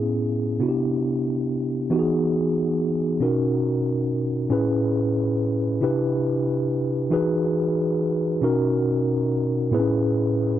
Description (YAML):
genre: R&B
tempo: 46 BPM (dotted quarters)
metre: 6/8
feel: straight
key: A lydian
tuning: A4 = 440 Hz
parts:
  - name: mellow tine electric piano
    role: solo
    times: 0.0-10.6 s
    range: A2 to B4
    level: -20 LUFS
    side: equal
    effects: medium stereo tremolo, tape echo
room: light reverb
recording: dry, close 1970s-style studio recording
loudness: -20 LUFS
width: side -11 dB against mid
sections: 0.0-4.5 A section; 4.5-10.6 B section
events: none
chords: 0.0 Amaj9; 0.6 Cmaj9; 1.9 Emaj9; 3.2 Bmaj9; 4.5 Amaj9; 5.8 Cmaj9; 7.1 Emaj9; 8.4 Bmaj9; 9.7 Amaj9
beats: 0.59 | 1.89 3.20 | 4.50 5.81 | 7.11 8.41 | 9.72